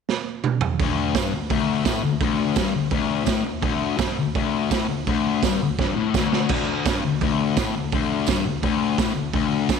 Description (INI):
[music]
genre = garage rock duo or trio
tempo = 168 BPM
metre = 4/4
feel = straight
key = unclear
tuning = A4 = 436 Hz
[part]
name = raw garage drum kit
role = drums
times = 0.1-9.8 s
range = crash cymbal, hi-hat, kick drum, snare drum, toms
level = -24 LUFS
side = right 6 dB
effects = none
[part]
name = fuzz guitar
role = riff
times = 0.8-9.8 s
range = D2 to A2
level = -22 LUFS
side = left 8 dB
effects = distortion
[part]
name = tambourine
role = percussion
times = 1.2-9.8 s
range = none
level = -39 LUFS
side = right 14 dB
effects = none
[sound]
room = moderate echo chamber reverb, RT60 1.7 s, small room ambience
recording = 1960s-style stereo with parts hard left and right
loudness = -20 LUFS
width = side -6 dB against mid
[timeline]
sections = 0.8-9.8 A section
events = drum fill 0.1-0.8, 5.8-6.5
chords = none